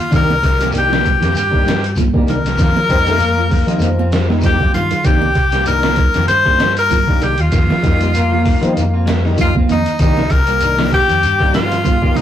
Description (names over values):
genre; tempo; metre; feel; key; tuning
afrobeat; 97 BPM; 4/4; swing 55% on 16ths; C minor; A4 = 440 Hz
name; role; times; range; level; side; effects
edgy tenor saxophone; melody; 0.0-12.2 s; Eb4 to C5; -16 LUFS; left 3 dB; none
breathy trumpet; second line; 0.0-12.2 s; Eb4 to C5; -25 LUFS; right 1 dB; none
clean electric guitar; arpeggios; 0.0-12.2 s; Eb3 to G3; -25 LUFS; left 5 dB; none
combo organ; accompaniment; 0.1-12.2 s; Eb3 to F4; -24 LUFS; left 3 dB; none
clean electric guitar; stabs; 0.1-12.2 s; Eb3 to G4; -26 LUFS; right 6 dB; none
fingered electric bass; bass; 0.1-12.2 s; C2 to F3; -19 LUFS; equal; none
lo-fi sampler-style drum kit; drums; 0.1-12.2 s; hi-hat, kick drum, snare drum; -17 LUFS; equal; none
congas; percussion; 0.1-12.2 s; none; -23 LUFS; right 6 dB; none
shekere; percussion; 0.1-12.2 s; none; -28 LUFS; left 1 dB; none
warm bass trombone; second line; 2.9-4.3, 8.2-9.2 s; F3 to C4; -21 LUFS; left 4 dB; none
room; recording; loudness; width
moderate studio reverb, RT60 0.6 s; rough rehearsal-room recording, warm saturation, lossy compression artefacts; -12 LUFS; side -10 dB against mid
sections
0.0-12.2 A section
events
drum fill 3.8-5.1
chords
0.1 Cm7; 2.6 F7sus4; 5.1 Cm7; 7.5 F7sus4; 10.0 Cm7